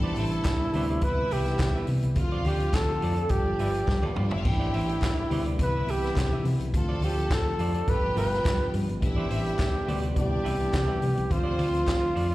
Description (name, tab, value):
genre	disco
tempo	105 BPM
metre	4/4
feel	straight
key	A minor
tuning	A4 = 440 Hz
part	breathy flugelhorn	melody	0.0-12.3 s	E4 to B4	-30 LUFS	equal	slapback echo
part	bright studio string section	second line	0.0-12.1 s	A3 to A5	-38 LUFS	left 2 dB	slapback echo
part	mellow tine electric piano	accompaniment	0.0-12.3 s	C3 to F4	-35 LUFS	left 2 dB	slapback echo
part	semi-hollow electric guitar	accompaniment	0.0-12.3 s	F4 to E5	-39 LUFS	right 6 dB	slapback echo
part	pipe organ, principal	sustained chords	0.0-12.3 s	C3 to F4	-37 LUFS	equal	none
part	hollow-body short-scale fingered electric bass	bass	0.0-12.3 s	G1 to C3	-28 LUFS	equal	none
part	vintage drum kit	drums	0.2-12.3 s	crash cymbal, handclaps, hi-hat, kick drum, snare drum, toms	-29 LUFS	equal	none
part	group handclap	percussion	0.4-12.0 s	none	barely audible	none	none
part	congas	percussion	5.0-12.0 s	none	-42 LUFS	left 4 dB	none
room	small room reverb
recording	live gig heard through the venue's PA, recital hall reverb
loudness	-24 LUFS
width	side -17 dB against mid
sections	0.0-12.3 A section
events	drum fill 3.9-4.5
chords	0.0 Am11; 1.0 Cmaj7; 2.2 Dm7; 3.3 G7; 4.5 Am11; 5.6 Cmaj7; 6.7 Dm7; 7.9 G7; 9.0 Am11; 10.2 Cmaj7; 11.3 Dm7